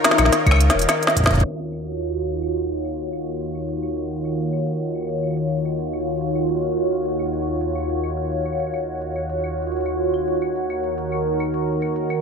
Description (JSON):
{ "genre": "IDM", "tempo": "107 BPM", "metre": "4/4", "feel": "straight", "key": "Eb minor", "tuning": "A4 = 440 Hz", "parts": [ { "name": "phased analog pad", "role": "sustained chords", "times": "0.0-12.2 s", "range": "Eb2 to Db5", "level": "-22 LUFS", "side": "equal", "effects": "phaser, chorus" }, { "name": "organic electronic drum kit", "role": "drums", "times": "0.0-12.2 s", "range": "claves, hi-hat, snare drum", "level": "-20 LUFS", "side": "equal", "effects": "overdrive, low-pass filter on hats, small room ambience, low-pass filter on perc, low-pass filter on snare, gated reverb, ping-pong delay" }, { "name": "warm sub bass", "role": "bass", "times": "0.2-1.4 s", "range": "Eb1 to Db2", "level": "-18 LUFS", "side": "equal", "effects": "none" }, { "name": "electronic kick drum", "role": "drums", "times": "0.5-1.4 s", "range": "none", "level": "-18 LUFS", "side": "equal", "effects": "overdrive, small room ambience" } ], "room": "wet lush hall reverb, RT60 2.0 s", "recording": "bright 1980s-style digital production, low-pass filter", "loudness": "-20 LUFS", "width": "side -5 dB against mid", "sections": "0.0-1.4 A section; 1.4-12.2 B section", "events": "drum fill 0.3-1.4; band accent 1.3; filter sweep on drum 1.4-12.2; filter sweep 1.4-12.2", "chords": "0.0 Db; 1.4 Ebm7", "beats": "0.32 0.89 | 1.45 2.01 2.57 3.13 | 3.69 4.25 4.81 5.37 | 5.93 6.49 7.05 7.61 | 8.18 8.73 9.30 9.86 | 10.42 10.98 11.54 12.10" }